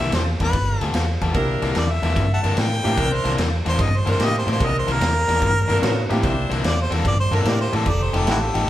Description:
electric blues shuffle; 147 BPM; 4/4; swing 68% on 8ths; C mixolydian; A4 = 440 Hz
warm harmonica; melody; 0.0-8.7 s; E4 to A5; -24 LUFS; equal
clear concert grand piano; accompaniment; 0.0-8.7 s; A3 to G4; -28 LUFS; right 2 dB
biting overdriven guitar; riff; 0.0-8.7 s; C3 to A4; -26 LUFS; left 4 dB
vintage muted fingered electric bass; bass; 0.0-8.7 s; F1 to A2; -22 LUFS; equal
raw garage drum kit; drums; 0.0-8.6 s; kick drum, ride cymbal, snare drum; -25 LUFS; equal
clear saxophone section; stabs; 1.3-8.4 s; D4 to C5; -27 LUFS; equal
moderate studio reverb, RT60 0.7 s; band playing live in one room; -18 LUFS; side -13 dB against mid
0.0-1.3 A section; 1.3-8.7 B section
harmonica solo 1.3-8.7
0.0 C9; 0.5 G9; 1.3 C9; 7.9 F9

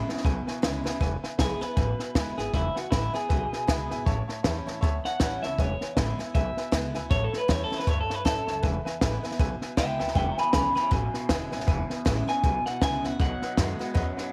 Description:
rockabilly; 158 BPM; 4/4; swing 59% on 8ths; E mixolydian; A4 = 439 Hz
picked steel-string acoustic guitar; accompaniment; 0.0-14.3 s; E2 to F#4; -38 LUFS; equal
electric guitar through a small old amp; riff; 0.0-1.0, 10.2-14.3 s; E2 to G#3; -38 LUFS; equal; phaser
upright bass; bass; 0.0-14.2 s; E1 to F#2; -33 LUFS; equal
clear upright piano; accompaniment; 0.1-14.3 s; B4 to A5; -40 LUFS; equal
compact cocktail drum kit; drums; 0.1-14.2 s; hi-hat, kick drum, snare drum; -30 LUFS; equal
electric guitar through a small old amp; melody; 1.4-14.3 s; E4 to B5; -32 LUFS; equal; phaser, tape echo
light reverb, small room ambience; -27 LUFS; mono
0.0-1.0 A section; 1.0-14.3 B section
drum fill 0.8; clean electric guitar solo 1.0-14.3
0.0 E7; 4.1 A7; 5.6 E7; 7.1 A7; 8.6 E7; 13.2 B7

